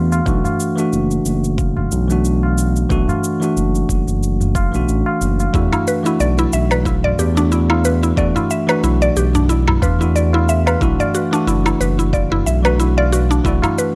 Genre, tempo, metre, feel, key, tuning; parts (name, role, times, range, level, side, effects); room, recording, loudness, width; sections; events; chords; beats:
organic downtempo; 91 BPM; 4/4; swing 55% on 16ths; A4 = 440 Hz
bell-like tine electric piano; accompaniment; 0.0-13.9 s; E3 to F#4; -22 LUFS; equal; sidechain pumping, tape echo
smooth synth bass; bass; 0.0-13.6 s; F#1 to E2; -20 LUFS; equal; tube saturation
cabasa and woodblock; drums; 0.1-13.9 s; -28 LUFS; equal
tabla; percussion; 0.1-13.8 s; -28 LUFS; equal
electronic kick drum; drums; 0.3-13.6 s; -23 LUFS; equal
mallet-like synth pluck; arpeggios; 5.5-13.9 s; D4 to E5; -22 LUFS; equal; chorus, tape echo
light reverb; -16 LUFS; mono
0.0-13.9 A section
0.3 Bm7; 5.5 E7(no3); 10.8 Bm7
| 0.27 0.93 1.59 2.25 | 2.91 3.56 4.22 4.88 | 5.54 6.20 6.86 7.52 | 8.18 8.84 9.50 10.16 | 10.82 11.48 12.14 12.80 | 13.46